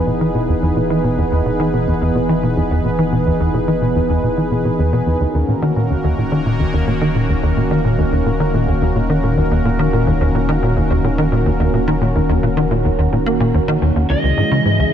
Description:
ambient, sequencer-driven space music; 108 BPM; 4/4; straight; A4 = 440 Hz
sweeping resonant pad; sustained chords; 0.0-14.9 s; C#3 to B4; -18 LUFS; equal; chorus
tight sequencer bass; riff; 0.0-14.8 s; C#2 to A#3; -17 LUFS; equal; wide subtle chorus, tape echo
warm sub bass; bass; 0.0-14.9 s; D#1 to E1; -25 LUFS; equal; tube saturation
lead guitar through a small cranked amp; melody; 14.1-14.9 s; D#5; -19 LUFS; right 1 dB; overdrive
moderate lush hall reverb, RT60 2.9 s; -14 LUFS; side -9 dB against mid
0.0-14.1 A section
fade-in on sub bass 0.0-14.1; filter sweep on analog synth bass 0.0-14.1
0.0 Emaj7; 5.2 D#m7; 14.1 C#m/E

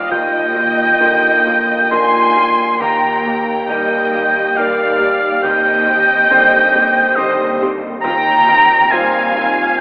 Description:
cinematic, emotional film score for orchestra; 68 BPM; 3/4; rubato; Eb major; A4 = 441 Hz
muted symphonic violin section; melody; 0.0-9.8 s; Eb5 to C6; -22 LUFS; equal
muted symphonic violin section; second line; 0.0-9.8 s; C5 to Ab5; -21 LUFS; equal
warm oboe; second line; 0.0-9.8 s; Eb5 to C6; -13 LUFS; equal
bright concert grand piano; accompaniment; 0.0-9.8 s; Eb2 to C5; -23 LUFS; equal
mellow French horn section; sustained chords; 0.0-9.8 s; Bb3 to G4; -22 LUFS; equal
muted symphonic viola section; accompaniment; 0.1-9.4 s; Bb3 to G4; -27 LUFS; equal
muted symphonic cello section; bass; 0.1-9.7 s; Eb2; -27 LUFS; equal
muted symphonic double bass section; bass; 0.1-9.8 s; Eb2; -30 LUFS; equal
wet concert hall reverb, RT60 2.3 s; telephone sound; -11 LUFS; side -30 dB against mid
0.0-9.8 A section
0.1 Bb/Eb; 2.8 Eb; 5.4 Cmadd9/Eb; 8.0 Fmadd9/Eb

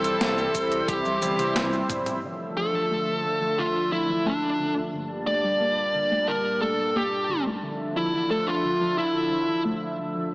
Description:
synthwave; 89 BPM; 4/4; straight; D minor; A4 = 443 Hz
fuzz lead guitar; melody; 0.0-9.6 s; D4 to D5; -25 LUFS; equal; distortion, digital delay
lush unison pad; sustained chords; 0.0-10.3 s; Bb2 to A5; -31 LUFS; equal; chorus, sidechain pumping
mellow synth brass; stabs; 0.0-10.3 s; G2 to A5; -32 LUFS; equal; chorus, cassette tape, tape echo
round analog bass; bass; 0.0-2.0 s; G1 to C2; -36 LUFS; equal
clean 12-bit digital drum machine; drums; 0.0-2.4 s; crash cymbal, hi-hat, shaker, snare drum, toms; -30 LUFS; equal; overdrive, low-pass filter on hats, small room reverb, low-pass filter on perc, low-pass filter on snare, low-pass filter on toms, low-pass filter on cymbals, gated reverb
electronic kick drum; drums; 0.5-2.0 s; -32 LUFS; equal; overdrive, small room reverb
soft round pluck; arpeggios; 2.2-10.3 s; D3 to Bb3; -34 LUFS; left 1 dB; analog chorus, tape echo
moderate lush hall reverb, RT60 1.9 s; small speaker sound; -23 LUFS; side -25 dB against mid
0.0-2.2 A section; 2.2-10.3 B section
drum fill 0.9-2.2; filter sweep on synth arpeggio sound 2.2-10.3; filter sweep on analog polysynth 2.2-10.3
0.0 C; 2.2 Dmadd9; 4.9 Gmadd9; 7.6 Dmadd9

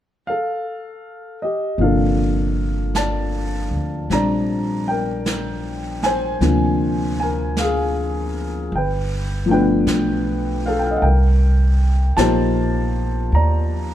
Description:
jazz ballad; 52 BPM; 4/4; swing 66% on 8ths; G minor; A4 = 442 Hz
warm baby grand piano; accompaniment; 0.3-13.9 s; C3 to Bb5; -20 LUFS; left 2 dB
upright bass; bass; 1.8-13.9 s; G1 to Eb2; -20 LUFS; right 1 dB
jazz brush drum kit; drums; 1.8-13.9 s; brushed snare drum, hi-hat, snare drum; -30 LUFS; right 2 dB
little or no reverb; dark, warm production; -17 LUFS; side -11 dB against mid
0.0-1.8 A section; 1.8-13.9 B section
0.0 Gsus2; 1.8 Gm9; 6.4 Dm7b5; 8.7 G7; 11.0 Cm9

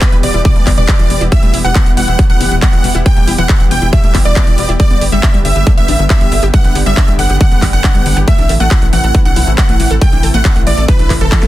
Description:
uplifting trance; 138 BPM; 4/4; straight; E minor; A4 = 445 Hz
big supersaw lead; melody; 0.0-11.5 s; A4 to G5; -18 LUFS; right 1 dB; sidechain pumping, digital delay
wide unison pluck; second line; 0.0-11.5 s; A4 to G5; -24 LUFS; right 2 dB
lush unison pad; sustained chords; 0.0-11.5 s; C3 to G4; -20 LUFS; equal; chorus, sidechain pumping
analog pluck; arpeggios; 0.0-11.5 s; B2 to A4; -22 LUFS; left 4 dB; chorus, sidechain pumping, digital delay
big-room dance drum kit; drums; 0.0-11.5 s; handclaps, hi-hat, snare drum; -20 LUFS; equal; overdrive, studio reverb
electronic kick drum; drums; 0.0-11.4 s; -10 LUFS; equal; overdrive, studio reverb
downlifter; sound effects; 0.0-1.3 s; -36 LUFS; right 1 dB
tight sequencer bass; bass; 0.1-11.5 s; E1 to B1; -15 LUFS; equal; sidechain pumping
digital ambience; dense, heavily limited modern master; -8 LUFS; side -15 dB against mid
0.0-11.5 A section
drum fill 11.3
0.0 Em; 4.8 G; 8.3 Am

